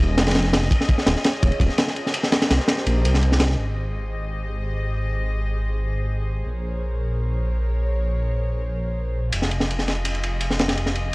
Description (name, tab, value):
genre	drum and bass, jungle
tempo	167 BPM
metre	4/4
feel	straight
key	unclear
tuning	A4 = 439 Hz
part	dark studio string section	sustained chords	0.0-11.1 s	F4 to Eb5	-31 LUFS	left 1 dB	none
part	dark detuned saw bass	bass	0.0-11.1 s	Eb1 to C2	-22 LUFS	equal	none
part	crunchy breakbeat drum kit	drums	0.2-3.6, 9.3-11.0 s	kick drum, ride cymbal, snare drum	-20 LUFS	equal	none
room	small room ambience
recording	dry, gritty hardware recording, cassette tape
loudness	-20 LUFS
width	side -25 dB against mid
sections	0.0-3.6 A section; 3.6-11.1 B section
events	drop 0.0-3.6; kick drops out 2.9-3.6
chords	0.0 Fm9; 0.7 Eb9sus4; 2.1 Cm7; 3.6 Abmaj7; 6.5 Bbm9; 9.3 Fm9